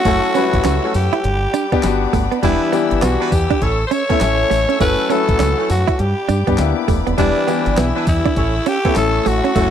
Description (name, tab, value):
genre	R&B, new jack swing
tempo	101 BPM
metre	4/4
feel	swing 62% on 16ths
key	unclear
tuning	A4 = 440 Hz
part	growling tenor saxophone	melody	0.0-9.7 s	D4 to C#5	-19 LUFS	right 1 dB	slapback echo
part	clear baby grand piano	accompaniment	0.0-9.7 s	E3 to B4	-20 LUFS	left 10 dB	none
part	warm studio string section	sustained chords	0.0-9.7 s	G3 to E6	-28 LUFS	left 2 dB	none
part	direct-recorded clean electric guitar	riff	0.1-9.7 s	G3 to E4	-21 LUFS	right 11 dB	wide subtle chorus
part	dark horn section	stabs	0.1-9.7 s	A3 to C#5	-23 LUFS	right 2 dB	none
part	deep dub fingered electric bass	bass	0.1-9.7 s	D#1 to G2	-19 LUFS	equal	none
part	crisp 8-bit digital drum machine	drums	0.1-9.7 s	handclaps, hi-hat, kick drum, snare drum, tambourine	-22 LUFS	equal	overdrive
room	little or no reverb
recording	dry, close 1970s-style studio recording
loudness	-14 LUFS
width	side -9 dB against mid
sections	0.0-9.7 A section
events	none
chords	0.1 F#m7; 1.2 G; 2.4 Em7; 3.6 A; 4.8 F#m7; 6.0 G; 7.2 Em7; 8.4 A